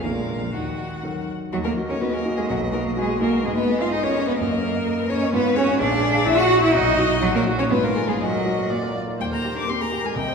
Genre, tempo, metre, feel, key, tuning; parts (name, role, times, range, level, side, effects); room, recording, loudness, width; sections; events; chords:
quick classical-period movement for piano quartet; 125 BPM; 2/4; rubato; Eb minor; A4 = 440 Hz
rich violin; melody; 0.0-10.3 s; Gb4 to D6; -26 LUFS; left 6 dB
rich cello; second line; 0.0-10.3 s; Eb3 to Gb4; -22 LUFS; right 2 dB
rich viola; accompaniment; 0.0-10.3 s; F4 to Eb5; -30 LUFS; equal
warm concert grand piano; accompaniment; 0.0-10.3 s; Bb1 to F5; -25 LUFS; equal
wet concert hall reverb, RT60 2.1 s; heard from further back in the room; -19 LUFS; side -5 dB against mid
0.0-1.5 A section; 1.5-9.2 A section; 9.2-10.3 A section
0.0 Bb7; 0.5 Ebm; 2.5 B; 3.4 Ab5; 4.4 Ebm/Gb; 5.3 Fdim/Ab; 5.8 Bb7; 6.3 Gb7/Bb; 6.7 B; 7.2 Gb/Bb; 7.7 Fdim/Ab; 8.2 Ebm/Bb; 8.7 Bb; 9.2 Eb